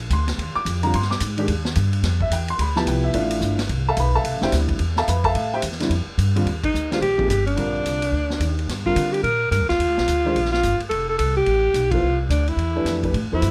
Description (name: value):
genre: modal jazz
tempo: 216 BPM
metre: 4/4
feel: swing 62% on 8ths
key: unclear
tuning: A4 = 440 Hz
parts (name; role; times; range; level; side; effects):
- upright bass; bass; 0.0-13.5 s; F1 to D3; -25 LUFS; equal; none
- warm upright piano; accompaniment; 0.1-13.5 s; Eb2 to D6; -26 LUFS; equal; none
- vintage drum kit; drums; 0.1-13.5 s; hi-hat, kick drum, ride cymbal, snare drum; -32 LUFS; equal; none
- breathy alto saxophone; melody; 6.6-13.5 s; D4 to Bb4; -23 LUFS; equal; none
room: light reverb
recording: none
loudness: -21 LUFS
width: mono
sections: 0.0-6.5 A section; 6.5-13.5 B section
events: band accent 6.6, 11.9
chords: 0.0 Ebmaj9; 2.0 Fmaj9; 6.5 Ebmaj9; 10.9 Fmaj9